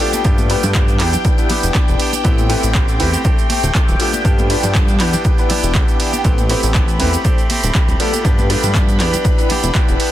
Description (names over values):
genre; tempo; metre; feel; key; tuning
filtered disco house; 120 BPM; 4/4; swing 54% on 16ths; unclear; A4 = 441 Hz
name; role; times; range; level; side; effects
warm concert grand piano; accompaniment; 0.0-10.1 s; A3 to C5; -22 LUFS; left 2 dB; phaser, sidechain pumping
phased string machine; sustained chords; 0.0-10.1 s; G5 to B5; -25 LUFS; left 1 dB; ensemble chorus, phaser, vintage 12-bit sampler grit, sidechain pumping
direct-recorded clean electric guitar; riff; 0.0-10.1 s; E3 to G4; -24 LUFS; right 2 dB; sidechain pumping
punchy analog drum machine; drums; 0.0-10.1 s; handclaps, hi-hat, ride cymbal, shaker; -22 LUFS; right 3 dB; sidechain pumping on hats, sidechain pumping on cymbals, sidechain pumping on perc
egg shaker and congas; percussion; 0.1-10.0 s; none; -27 LUFS; left 1 dB; sidechain pumping on perc
fat analog bass; bass; 0.2-10.0 s; D1 to G2; -18 LUFS; equal; sidechain pumping
electronic kick drum; drums; 0.2-9.9 s; none; -16 LUFS; equal; none
room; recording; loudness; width
little or no reverb; dense, heavily limited modern master; -12 LUFS; side -13 dB against mid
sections
0.0-10.1 A section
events
none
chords
0.0 G7; 1.0 Em7; 2.2 Am9; 3.2 D7sus4; 4.0 G7; 5.0 Em7; 6.2 Am9; 7.2 D7sus4; 8.0 G7; 9.0 Em7